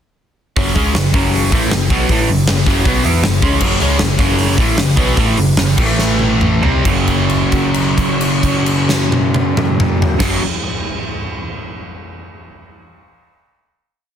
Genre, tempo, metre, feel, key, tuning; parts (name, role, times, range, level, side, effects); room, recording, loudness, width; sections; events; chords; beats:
hard rock; 132-158 BPM; 4/4; straight; A4 = 444 Hz
distorted electric guitar; riff; 0.6-10.4 s; F#2 to E4; -20 LUFS; equal; distortion
overdriven semi-hollow guitar; riff; 0.6-10.4 s; F#2 to E4; -19 LUFS; right 8 dB; phaser
sludgy distorted guitar; riff; 0.6-10.4 s; F#2 to E4; -20 LUFS; left 8 dB; overdrive
hollow-body short-scale picked electric bass; bass; 0.6-10.4 s; F#1 to E2; -20 LUFS; equal
huge arena drum kit; drums; 0.6-10.3 s; crash cymbal, hi-hat, kick drum, snare drum, toms; -17 LUFS; equal
light reverb; dense, heavily limited modern master; -12 LUFS; side -9 dB against mid
0.6-6.9 riff; 6.9-10.5 final chord
slowing down 3.6-6.9; drum fill 6.0-6.9; held note 6.9-10.2
0.6 F#5; 5.8 A5; 6.6 C5; 6.9 F#5
| 0.57 0.95 1.33 1.72 | 2.10 2.48 2.86 3.24 | 3.62 4.01 4.39 4.78 | 5.18 5.58 6.00 6.42 | 6.87 7.32 7.76 8.21 | 8.67 9.12 9.57 10.02